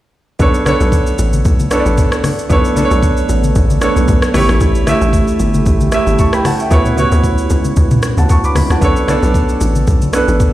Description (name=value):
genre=amapiano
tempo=114 BPM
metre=4/4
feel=swing 55% on 16ths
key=B minor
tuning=A4 = 438 Hz
part: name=warm grand piano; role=accompaniment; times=0.4-10.5 s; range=A3 to D6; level=-15 LUFS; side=right 2 dB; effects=none
part: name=deep dark ambient pad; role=sustained chords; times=1.4-10.5 s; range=A3 to B4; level=-23 LUFS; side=right 1 dB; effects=chorus, built-in reverb, sidechain pumping
part: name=tight log drum bass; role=bass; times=0.4-10.4 s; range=G1 to D2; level=-15 LUFS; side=equal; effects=none
part: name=smooth R&B drum kit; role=drums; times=0.4-10.5 s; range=hi-hat, kick drum, rim click, shaker, toms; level=-16 LUFS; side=equal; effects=none
part: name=congas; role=percussion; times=0.7-10.5 s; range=none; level=-21 LUFS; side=left 2 dB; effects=none
room=digital ambience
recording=played on a big sound system in a bare room, large studio reverb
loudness=-10 LUFS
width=side -14 dB against mid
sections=0.4-10.5 A section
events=drop 0.4-10.5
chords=0.4 Bm9; 4.3 A7; 6.7 Dmaj13; 8.8 Bm9